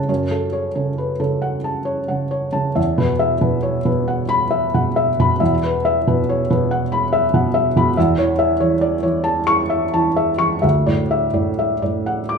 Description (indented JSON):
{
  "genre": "neoclassical minimalist piano",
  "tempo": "46 BPM (dotted quarters)",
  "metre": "6/8",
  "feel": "uneven beats, rubato",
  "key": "unclear",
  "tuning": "A4 = 440 Hz",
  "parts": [
    { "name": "felt-muted upright piano", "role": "solo", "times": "0.0-12.4 s", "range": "D2 to D6", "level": "-16 LUFS", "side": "equal", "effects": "none" }
  ],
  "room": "moderate recital hall reverb, RT60 1.5 s",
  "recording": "minimal, uncompressed stereo recording",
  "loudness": "-16 LUFS",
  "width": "side -5 dB against mid",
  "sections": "0.0-12.4 A section",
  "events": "none",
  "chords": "0.0 F#m; 2.8 Esus2; 8.0 A/E; 10.6 Dadd9",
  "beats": "| 0.09 1.42 | 2.77 4.09 | 5.40 6.69 | 7.97 9.26 | 10.63 12.06"
}